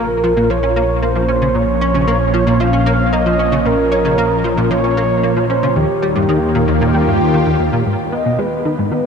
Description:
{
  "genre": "ambient, sequencer-driven space music",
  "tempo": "114 BPM",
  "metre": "4/4",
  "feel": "straight",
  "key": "unclear",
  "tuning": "A4 = 439 Hz",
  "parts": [
    { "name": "mellow horn-like synth lead", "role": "melody", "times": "0.0-9.1 s", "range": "G4 to F5", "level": "-18 LUFS", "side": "right 1 dB", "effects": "chorus, tape echo" },
    { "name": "lush unison pad", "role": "sustained chords", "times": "0.0-9.1 s", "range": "Bb2 to G#5", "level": "-18 LUFS", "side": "equal", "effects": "chorus, phaser" },
    { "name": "plucky analog bass", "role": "riff", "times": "0.0-9.0 s", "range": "Eb2 to Db4", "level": "-18 LUFS", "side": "equal", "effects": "ensemble chorus, tape echo" },
    { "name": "analog drone", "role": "bass", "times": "0.0-7.8 s", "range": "Bb1 to Eb2", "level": "-21 LUFS", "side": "equal", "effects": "chorus" },
    { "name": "pulsing gated texture", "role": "texture", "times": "8.4-9.1 s", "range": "B3 to B4", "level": "-26 LUFS", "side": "left 5 dB", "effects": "chorus, built-in reverb" }
  ],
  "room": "wet huge ambient reverb, RT60 8.1 s",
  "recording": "cassette tape",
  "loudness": "-12 LUFS",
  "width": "side -6 dB against mid",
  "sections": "0.0-7.9 A section; 7.9-9.1 B section",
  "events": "none",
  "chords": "0.0 Bbm; 5.8 Eb7; 7.9 G#m"
}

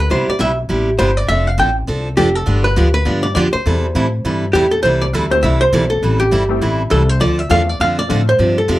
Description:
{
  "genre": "country, western swing",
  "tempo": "203 BPM",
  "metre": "4/4",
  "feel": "swing 61% on 8ths",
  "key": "C major",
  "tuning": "A4 = 437 Hz",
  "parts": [
    { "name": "archtop guitar, miked and amplified", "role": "melody", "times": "0.0-8.8 s", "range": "G4 to G5", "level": "-16 LUFS", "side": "equal", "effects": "none" },
    { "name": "upright bass", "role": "bass", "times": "0.0-8.8 s", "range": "F1 to A2", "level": "-17 LUFS", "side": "equal", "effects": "none" },
    { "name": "picked steel-string acoustic guitar", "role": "accompaniment", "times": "0.1-8.8 s", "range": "C3 to A4", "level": "-19 LUFS", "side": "right 1 dB", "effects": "none" },
    { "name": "honky-tonk upright piano", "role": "accompaniment", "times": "5.3-8.3 s", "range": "F3 to G4", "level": "-23 LUFS", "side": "left 6 dB", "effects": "none" }
  ],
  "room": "moderate club reverb, RT60 0.6 s",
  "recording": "none",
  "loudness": "-13 LUFS",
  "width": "side -16 dB against mid",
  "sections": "0.0-8.8 A section",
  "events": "none",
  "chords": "0.1 Cmaj7; 1.3 F6; 2.5 G7; 3.7 C6; 6.0 Am7; 7.2 Dm7"
}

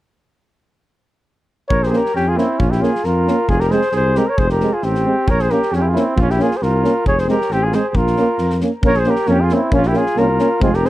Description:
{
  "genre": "balkan folk, Balkan brass band",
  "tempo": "135 BPM",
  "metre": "2/4",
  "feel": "swing 54% on 16ths",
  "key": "Bb dorian sharp4",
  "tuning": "A4 = 440 Hz",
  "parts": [
    { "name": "mellow flugelhorn", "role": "melody", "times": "1.7-10.9 s", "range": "E4 to Db5", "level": "-19 LUFS", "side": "left 2 dB", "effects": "tape echo" },
    { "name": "mellow trumpet", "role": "second line", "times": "1.7-10.9 s", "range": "C4 to Bb4", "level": "-22 LUFS", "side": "right 5 dB", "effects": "none" },
    { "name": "dark tuba", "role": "bass", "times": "1.7-10.9 s", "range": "F1 to F2", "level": "-19 LUFS", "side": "equal", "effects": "none" },
    { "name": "loose indie drum kit", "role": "percussion", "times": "1.7-10.9 s", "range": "kick drum, snare drum", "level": "-22 LUFS", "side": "equal", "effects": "none" },
    { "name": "clear euphonium", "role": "accompaniment", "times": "1.9-10.9 s", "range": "C4 to Db4", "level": "-21 LUFS", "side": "left 4 dB", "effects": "none" },
    { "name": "warm euphonium", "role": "accompaniment", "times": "1.9-10.9 s", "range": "Ab3 to Bb3", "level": "-20 LUFS", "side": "right 4 dB", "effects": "none" }
  ],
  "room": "little or no reverb",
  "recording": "dry, close 1970s-style studio recording",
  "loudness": "-14 LUFS",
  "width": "side -15 dB against mid",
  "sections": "1.7-8.8 A section; 8.8-10.9 A section",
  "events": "none",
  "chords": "1.7 Bbm; 3.5 Fm; 5.3 Bbm; 7.1 Fm; 7.9 Bbm"
}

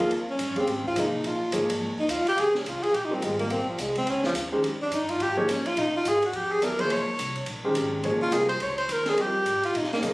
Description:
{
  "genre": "modal jazz",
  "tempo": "212 BPM",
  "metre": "4/4",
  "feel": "swing 61% on 8ths",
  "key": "Bb dorian",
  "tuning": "A4 = 439 Hz",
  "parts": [
    { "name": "mellow tenor saxophone", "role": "melody", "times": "0.0-10.0 s", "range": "F3 to Db5", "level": "-25 LUFS", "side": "equal", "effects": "none" },
    { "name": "clear concert grand piano", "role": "accompaniment", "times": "0.0-10.1 s", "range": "Eb3 to F5", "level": "-27 LUFS", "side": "equal", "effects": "none" },
    { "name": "upright bass", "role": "bass", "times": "0.0-10.1 s", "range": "Ab1 to C3", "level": "-38 LUFS", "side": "equal", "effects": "none" },
    { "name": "open jazz drum kit", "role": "drums", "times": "0.0-10.1 s", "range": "hi-hat, kick drum, ride cymbal, snare drum", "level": "-34 LUFS", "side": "right 1 dB", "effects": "none" }
  ],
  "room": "moderate club reverb, RT60 0.5 s",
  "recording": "recorded on a phone in the room, studio reverb, compression",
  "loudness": "-24 LUFS",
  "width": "side -22 dB against mid",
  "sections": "0.0-10.1 A section",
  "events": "tenor saxophone solo 0.0-10.1",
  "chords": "0.0 Bbm9"
}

